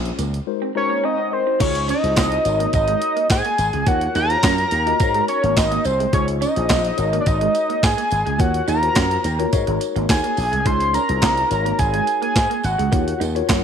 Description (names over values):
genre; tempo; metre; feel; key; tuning
early-eighties boogie funk; 106 BPM; 4/4; straight; unclear; A4 = 443 Hz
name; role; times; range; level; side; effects
mellow tine electric piano; accompaniment; 0.0-13.6 s; Ab3 to Bb5; -26 LUFS; left 12 dB; medium stereo tremolo
slap bass with an envelope filter; bass; 0.0-13.6 s; Ab1 to Ab2; -23 LUFS; equal; none
clean 12-bit digital drum machine; drums; 0.1-13.6 s; crash cymbal, handclaps, hi-hat, kick drum, snare drum; -21 LUFS; equal; none
electric guitar through a small old amp; riff; 0.2-13.6 s; Ab3 to Eb4; -28 LUFS; right 14 dB; lush chorus
tambourine; percussion; 0.2-13.6 s; none; -36 LUFS; right 14 dB; none
fat analog lead; melody; 0.8-13.2 s; C5 to C6; -20 LUFS; equal; chorus, slapback echo
room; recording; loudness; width
moderate plate reverb, RT60 1.8 s; 1960s-style stereo with parts hard left and right; -17 LUFS; side -7 dB against mid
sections
0.0-1.6 A section; 1.6-13.6 B section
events
tine electric piano fill 0.5-1.6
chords
0.5 Ab9; 1.6 Dbmaj9; 2.5 Ab7sus4; 3.9 Ebm7; 5.0 Ab7sus4; 6.1 Dbmaj9; 7.0 Ab7sus4; 8.4 Ebm7; 9.5 Ab7sus4; 10.7 Dbmaj9; 11.5 Ab7sus4; 12.9 Ebm7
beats
0.47 1.04 | 1.60 2.17 2.74 3.30 | 3.87 4.43 5.00 5.57 | 6.13 6.70 7.26 7.83 | 8.40 8.96 9.53 10.09 | 10.66 11.23 11.79 12.36 | 12.92 13.49